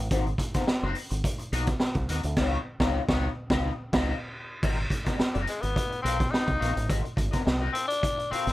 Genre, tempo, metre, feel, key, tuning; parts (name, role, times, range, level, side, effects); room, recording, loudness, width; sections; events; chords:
funk; 106 BPM; 4/4; straight; Ab mixolydian; A4 = 437 Hz
fingered electric bass with an envelope filter; bass; 0.0-8.5 s; Gb1 to Eb2; -29 LUFS; equal
electric guitar at the edge of break-up; accompaniment; 0.1-8.5 s; Bb3 to F5; -33 LUFS; left 5 dB; wah
raw garage drum kit; drums; 0.1-8.5 s; crash cymbal, hi-hat, kick drum, snare drum; -28 LUFS; equal
breathy tenor saxophone; melody; 5.5-8.5 s; Ab3 to Eb4; -28 LUFS; left 2 dB
little or no reverb; -25 LUFS; side -16 dB against mid
0.0-4.6 A section; 4.6-8.5 B section
band accent 2.4-4.6; tenor saxophone solo 4.6-8.5
0.0 Ab9; 2.4 Db9; 4.6 Ab9